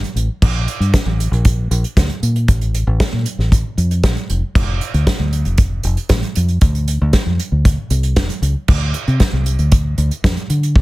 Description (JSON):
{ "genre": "indie rock", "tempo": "116 BPM", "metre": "4/4", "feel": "straight", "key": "unclear", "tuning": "A4 = 440 Hz", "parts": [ { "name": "fingered electric bass", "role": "bass", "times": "0.0-10.8 s", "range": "F1 to D3", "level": "-16 LUFS", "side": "equal", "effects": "none" }, { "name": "unplugged drum kit", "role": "drums", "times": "0.0-10.8 s", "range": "crash cymbal, hi-hat, kick drum, snare drum", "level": "-16 LUFS", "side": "equal", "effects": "soft clipping on kick" } ], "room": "little or no reverb", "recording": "dense, heavily limited modern master", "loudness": "-14 LUFS", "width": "side -19 dB against mid", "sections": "0.0-10.8 A section", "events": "none", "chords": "none" }